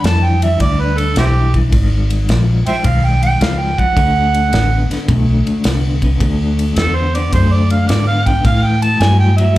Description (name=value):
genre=electric blues shuffle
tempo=107 BPM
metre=4/4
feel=swing 67% on 8ths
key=unclear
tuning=A4 = 439 Hz
part: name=mellow harmonica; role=second line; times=0.0-9.6 s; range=C4 to A5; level=-18 LUFS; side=right 3 dB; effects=overdrive, slapback echo
part: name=vintage muted fingered electric bass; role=bass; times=0.0-9.5 s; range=G#1 to A2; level=-14 LUFS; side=equal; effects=none
part: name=natural country drum kit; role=drums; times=0.0-9.5 s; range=kick drum, ride cymbal, snare drum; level=-19 LUFS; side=equal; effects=none
part: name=electric guitar through a small old amp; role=riff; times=0.1-9.6 s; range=G2 to B3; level=-19 LUFS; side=left 3 dB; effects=tremolo, slapback echo
room=little or no reverb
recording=live gig heard through the venue's PA, club reverb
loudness=-12 LUFS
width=side -16 dB against mid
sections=0.0-9.6 A section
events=harmonica solo 0.0-9.6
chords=0.0 G6; 1.7 G#m6; 4.0 D13; 8.4 A5